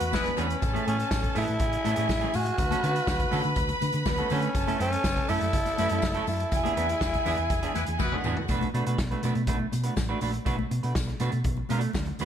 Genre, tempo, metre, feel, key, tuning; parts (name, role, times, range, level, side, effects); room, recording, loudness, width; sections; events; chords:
disco; 122 BPM; 4/4; straight; A4 = 438 Hz
growling tenor saxophone; melody; 0.0-8.2 s; B3 to F#4; -30 LUFS; left 1 dB
rich studio violin section; second line; 0.0-8.5 s; F#4 to B5; -32 LUFS; right 2 dB
semi-hollow electric guitar; accompaniment; 0.0-12.2 s; E3 to B4; -32 LUFS; right 5 dB; lush chorus
hollow-body short-scale fingered electric bass; bass; 0.0-12.2 s; E1 to D3; -30 LUFS; equal
vintage drum kit; drums; 0.0-12.2 s; hi-hat, kick drum, snare drum, toms; -31 LUFS; equal
clear horn section; stabs; 0.1-0.3, 7.7-8.2 s; G#3 to B4; -35 LUFS; left 2 dB
congas; percussion; 0.1-12.2 s; -38 LUFS; left 9 dB
tambourine; percussion; 0.1-12.2 s; -46 LUFS; left 7 dB
light reverb; -24 LUFS; side -9 dB against mid
0.0-8.5 A section; 8.5-12.2 B section
band accent 0.0-0.6, 6.5-8.5; drum fill 8.0-8.5
0.0 E7; 0.6 Amaj7; 2.6 Dmaj7; 4.5 F#m7; 6.5 E7; 8.5 Bm7